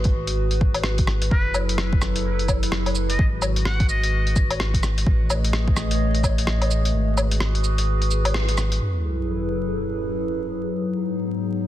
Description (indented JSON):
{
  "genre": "future garage",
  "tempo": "128 BPM",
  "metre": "4/4",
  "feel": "swing 61% on 16ths",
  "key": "G# phrygian",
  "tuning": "A4 = 440 Hz",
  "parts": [
    { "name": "warbly tape-like pad", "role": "sustained chords", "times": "0.0-11.7 s", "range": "F#2 to D#5", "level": "-27 LUFS", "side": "left 1 dB", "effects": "chorus, built-in reverb, sidechain pumping" },
    { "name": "warm sub bass", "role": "bass", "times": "0.0-8.8 s", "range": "F#1 to A1", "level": "-22 LUFS", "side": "equal", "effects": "sidechain pumping" },
    { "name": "lo-fi sampler-style drum kit", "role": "drums", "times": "0.0-8.8 s", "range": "cabasa, hi-hat, rim click, woodblock", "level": "-26 LUFS", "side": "left 1 dB", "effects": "low-pass filter on perc, low-pass filter on hats, soft clipping on snare, low-pass filter on snare" },
    { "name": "electronic kick drum", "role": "drums", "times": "0.1-6.3 s", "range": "none", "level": "-22 LUFS", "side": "equal", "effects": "overdrive" },
    { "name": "trumpet with metal mute", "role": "melody", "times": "1.3-4.4 s", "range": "B4 to F#5", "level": "-30 LUFS", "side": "left 1 dB", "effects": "ping-pong delay" },
    { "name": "sub drop", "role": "sound effects", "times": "8.8-10.7 s", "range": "none", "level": "-29 LUFS", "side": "equal", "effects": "none" }
  ],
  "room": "light reverb",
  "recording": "dense, heavily limited modern master, vinyl crackle",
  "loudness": "-20 LUFS",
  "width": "side -13 dB against mid",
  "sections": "0.0-8.8 A section; 8.8-11.7 B section",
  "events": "kick drops out 6.9-8.8; band accent 8.3; impact 8.8-10.7",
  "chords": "0.0 G#m7; 1.3 F#m11; 3.2 G#m7; 5.1 Amaj9#11; 6.9 G#m7; 8.8 F#m11; 10.7 G#m7"
}